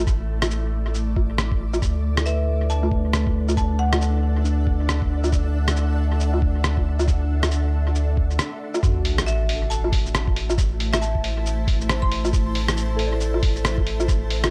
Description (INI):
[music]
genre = future garage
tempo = 137 BPM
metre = 4/4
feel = swing 61% on 16ths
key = A dorian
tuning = A4 = 438 Hz
[part]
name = granular cloud pad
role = sustained chords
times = 0.0-14.5 s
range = A3 to A5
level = -35 LUFS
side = equal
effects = built-in reverb, sidechain pumping
[part]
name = soft dub sub bass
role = bass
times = 0.0-14.5 s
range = A1 to D2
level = -25 LUFS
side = equal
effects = sidechain pumping
[part]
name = electronic kick drum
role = drums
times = 0.1-14.2 s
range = none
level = -24 LUFS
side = equal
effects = studio reverb
[part]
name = lo-fi sampler-style drum kit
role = drums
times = 0.1-14.5 s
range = hi-hat, rim click, shaker, woodblock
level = -28 LUFS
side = equal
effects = studio reverb, analog delay
[part]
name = flickering grainy texture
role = texture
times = 2.7-8.8 s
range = D4 to D5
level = -41 LUFS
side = equal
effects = built-in reverb
[part]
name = mellow tine electric piano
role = accompaniment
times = 2.2-14.5 s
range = A3 to D5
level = -34 LUFS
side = equal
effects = sidechain pumping, analog delay
[part]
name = marimba with medium hard mallets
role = melody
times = 2.3-4.1, 9.3-12.6 s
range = E5 to C6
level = -34 LUFS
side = equal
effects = analog delay
[part]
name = sub drop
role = sound effects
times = 8.8-10.6 s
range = none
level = -30 LUFS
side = equal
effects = none
[sound]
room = light reverb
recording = echo-heavy mix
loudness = -22 LUFS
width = mono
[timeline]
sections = 0.0-8.8 A section; 8.8-14.5 B section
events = break 8.4-8.8; impact 8.8-10.6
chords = 0.0 A5; 1.8 D; 8.8 Am